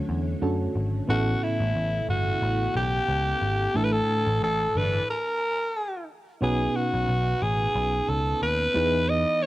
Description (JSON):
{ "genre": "pop", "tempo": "90 BPM", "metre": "4/4", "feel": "swing 55% on 16ths", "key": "A mixolydian, B mixolydian from 6.4 s", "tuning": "A4 = 436 Hz", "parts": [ { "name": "mellow FM electric piano", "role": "accompaniment", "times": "0.0-9.5 s", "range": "A2 to B4", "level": "-29 LUFS", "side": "right 1 dB", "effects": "chorus, tremolo, cassette tape, plate reverb" }, { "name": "string machine, cellos", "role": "sustained chords", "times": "0.0-5.1 s", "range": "C#3 to C#5", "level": "-37 LUFS", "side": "left 2 dB", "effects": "none" }, { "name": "vintage muted picked electric bass", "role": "bass", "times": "0.1-9.2 s", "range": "G1 to F#2", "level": "-27 LUFS", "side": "equal", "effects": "none" }, { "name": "raspy alto saxophone", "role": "melody", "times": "1.1-9.5 s", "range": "E4 to D#5", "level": "-25 LUFS", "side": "equal", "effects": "cassette tape, plate reverb" }, { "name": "analog synth brass", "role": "stabs", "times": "4.8-5.0 s", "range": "E3 to A4", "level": "-34 LUFS", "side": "equal", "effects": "chorus, cassette tape" } ], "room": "moderate booth ambience, RT60 0.2 s", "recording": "home recording on cassette", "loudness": "-23 LUFS", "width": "side -16 dB against mid", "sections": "0.0-6.4 A section; 6.4-9.5 A section", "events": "band accent 3.8-6.4; stop 5.1-6.4", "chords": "0.0 Dmaj7; 1.1 Aadd9; 3.8 Asus4; 5.1 N.C.; 6.4 Badd9; 8.8 Emaj7", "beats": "0.42 | 1.09 1.75 2.42 3.09 | 3.75 4.42 5.09 5.75 | 6.42 7.09 7.75 8.42 | 9.09" }